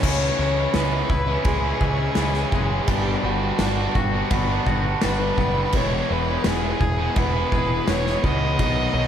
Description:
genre	post-rock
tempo	84 BPM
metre	4/4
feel	straight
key	E major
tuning	A4 = 440 Hz
part	dark violin	melody	0.0-9.1 s	F#4 to D#5	-27 LUFS	equal	ping-pong delay
part	glassy FM pad	sustained chords	0.0-9.1 s	E4 to D#6	-35 LUFS	equal	none
part	twangy electric guitar	arpeggios	0.0-9.1 s	E2 to G#4	-30 LUFS	left 3 dB	wide subtle chorus, ping-pong delay
part	distorted electric guitar	riff	0.0-9.1 s	G2 to E4	-29 LUFS	left 10 dB	distortion
part	distorted electric guitar	riff	0.0-9.1 s	G2 to E4	-29 LUFS	right 10 dB	distortion
part	fuzz picked electric bass	bass	0.0-9.1 s	E1 to C#2	-25 LUFS	equal	overdrive
part	loose indie drum kit	drums	0.0-8.8 s	crash cymbal, kick drum, snare drum	-25 LUFS	equal	none
room	moderate lush hall reverb, RT60 2.7 s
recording	dreamy mix soaked in reverb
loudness	-19 LUFS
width	side -9 dB against mid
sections	0.0-9.1 A section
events	none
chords	0.0 C#m7; 2.9 Gmaj7; 5.7 Emaj7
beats	| 0.03 0.74 1.46 2.17 | 2.88 3.60 4.31 5.02 | 5.74 6.45 7.16 7.88 | 8.59

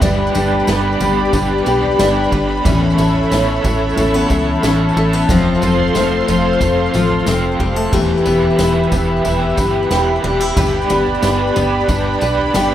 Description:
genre	dream pop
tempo	91 BPM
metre	4/4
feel	straight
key	unclear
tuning	A4 = 442 Hz
part	raw garage guitar	accompaniment	0.0-12.7 s	E3 to C#5	-24 LUFS	right 4 dB	overdrive, tremolo, wide subtle chorus
part	lush unison pad	sustained chords	0.0-12.7 s	G4 to C6	-18 LUFS	right 1 dB	chorus, phaser
part	picked twelve-string acoustic guitar	arpeggios	0.0-12.7 s	E3 to G4	-17 LUFS	left 3 dB	wide subtle chorus, digital delay
part	plucky analog bass	bass	0.0-12.7 s	E1 to C#2	-21 LUFS	right 1 dB	none
part	soft-mallet drum kit	drums	0.0-12.7 s	kick drum, snare drum, tambourine, toms	-22 LUFS	right 1 dB	none
room	moderate studio reverb, RT60 0.6 s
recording	rough home demo mix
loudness	-13 LUFS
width	side -11 dB against mid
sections	0.0-12.7 A section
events	none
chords	0.0 G; 2.7 Aadd9; 5.3 F; 7.9 Em; 10.6 G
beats	| 0.02 0.68 1.34 2.00 | 2.65 3.31 3.97 4.63 | 5.29 5.95 6.61 7.27 | 7.93 8.59 9.25 9.91 | 10.57 11.23 11.89 12.55

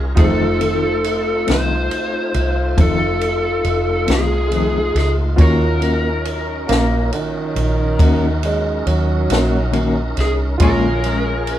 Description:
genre	slow blues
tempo	46 BPM (dotted quarters)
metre	12/8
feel	straight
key	unclear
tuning	A4 = 440 Hz
part	bright upright piano	accompaniment	0.0-11.6 s	A3 to C6	-26 LUFS	right 2 dB	none
part	tonewheel organ	sustained chords	0.0-11.6 s	D3 to Bb4	-29 LUFS	equal	slow rotary speaker, overdrive, chorus vibrato
part	vintage muted fingered electric bass	bass	0.0-11.6 s	F1 to Eb2	-20 LUFS	equal	none
part	lead guitar through a small cranked amp	melody	0.2-11.6 s	Ab4 to C5	-21 LUFS	left 1 dB	overdrive
part	mellow electric guitar	accompaniment	0.2-11.3 s	F2 to Gb4	-22 LUFS	left 3 dB	tremolo
part	mellow saxophone section	sustained chords	0.2-11.6 s	Gb3 to Ab4	-28 LUFS	left 2 dB	none
part	compact cocktail drum kit	drums	0.2-11.6 s	kick drum, ride cymbal, snare drum	-20 LUFS	equal	none
part	breathy tenor saxophone	second line	6.7-9.9 s	Eb3 to Bb3	-21 LUFS	right 3 dB	none
room	moderate large studio reverb, RT60 1.2 s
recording	band playing live in one room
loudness	-15 LUFS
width	side -12 dB against mid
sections	0.0-11.6 A section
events	none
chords	0.2 F7; 5.4 Ebm7; 10.6 Bbm7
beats	| 0.16 1.47 2.77 4.08 | 5.38 6.69 7.99 9.30 | 10.61

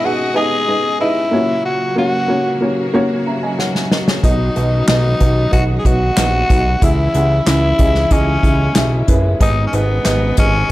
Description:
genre	piano-driven pop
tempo	93 BPM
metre	4/4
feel	straight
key	B major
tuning	A4 = 442 Hz
part	growling tenor saxophone	melody	0.0-10.7 s	B3 to G#4	-18 LUFS	left 1 dB	none
part	warm upright piano	accompaniment	0.0-10.7 s	G#2 to A#5	-19 LUFS	equal	none
part	clear studio string section	sustained chords	0.0-10.7 s	B2 to D#5	-25 LUFS	equal	none
part	unplugged drum kit	drums	3.6-10.5 s	handclaps, hi-hat, kick drum, snare drum	-16 LUFS	equal	none
part	fat analog bass	bass	4.2-10.6 s	F#1 to C#2	-17 LUFS	equal	none
room	moderate large studio reverb, RT60 0.8 s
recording	dark, warm production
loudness	-13 LUFS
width	side -16 dB against mid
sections	0.0-10.7 A section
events	drum fill 3.6-4.2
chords	0.0 G#m; 1.3 F#/A#; 4.2 B; 6.8 C#m; 9.4 G#m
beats	0.35 1.00 | 1.65 2.29 2.94 3.59 | 4.24 4.88 5.53 6.18 | 6.82 7.47 8.12 8.76 | 9.41 10.06 10.71

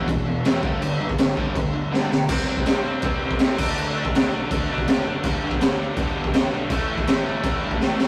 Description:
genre	punk rock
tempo	163 BPM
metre	4/4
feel	straight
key	unclear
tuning	A4 = 441 Hz
part	biting overdriven guitar	riff	0.0-2.3 s	E2 to G3	-33 LUFS	equal	none
part	cranked stack guitar	riff	0.0-8.1 s	E2 to D4	-29 LUFS	equal	overdrive
part	tight distorted guitar	riff	0.0-8.1 s	E2 to D4	-37 LUFS	equal	none
part	fuzz picked electric bass	bass	0.0-8.1 s	E1 to B2	-35 LUFS	equal	none
part	raw garage drum kit	drums	0.1-8.1 s	crash cymbal, kick drum, snare drum	-24 LUFS	equal	none
room	light reverb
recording	rough rehearsal-room recording, warm saturation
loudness	-22 LUFS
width	mono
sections	0.0-2.3 A section; 2.3-8.1 B section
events	drum fill 1.9-2.3, 7.8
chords	0.0 E5; 0.6 G5; 2.3 C5; 3.6 D5; 5.2 G; 6.7 A5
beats	0.09 0.46 | 0.83 1.20 1.56 1.93 | 2.30 2.67 3.04 3.40 | 3.77 4.14 4.50 4.87 | 5.24 5.61 5.97 6.34 | 6.71 7.07 7.44 7.81

